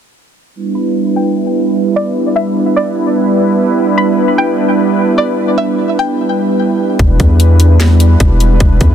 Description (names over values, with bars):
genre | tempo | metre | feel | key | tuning
hip hop, atmospheric cloud-rap | 149 BPM | 4/4 | half-time | E minor | A4 = 443 Hz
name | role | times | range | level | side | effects
warm analog pad | sustained chords | 0.6-8.9 s | G3 to B4 | -12 LUFS | right 1 dB | chorus, sidechain pumping, low-pass filter
string-like resonator pluck | melody | 0.7-7.0 s | D5 to B5 | -19 LUFS | equal | chorus, low-pass filter, digital delay
long sustained 808-style bass | bass | 7.0-8.9 s | E1 to E2 | -8 LUFS | equal | none
drum and bass drum kit | drums | 7.0-8.9 s | hi-hat, kick drum, snare drum | -12 LUFS | equal | overdrive
room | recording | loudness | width
light reverb, digital ambience | dense, heavily limited modern master | -9 LUFS | side -9 dB against mid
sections
0.6-7.0 A section; 7.0-8.9 B section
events
filter sweep 0.6-7.0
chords
0.6 Em7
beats
| 0.55 0.95 1.36 1.76 | 2.16 2.56 2.97 3.37 | 3.77 4.17 4.58 4.98 | 5.38 5.79 6.19 6.59 | 6.99 7.40 7.80 8.20 | 8.61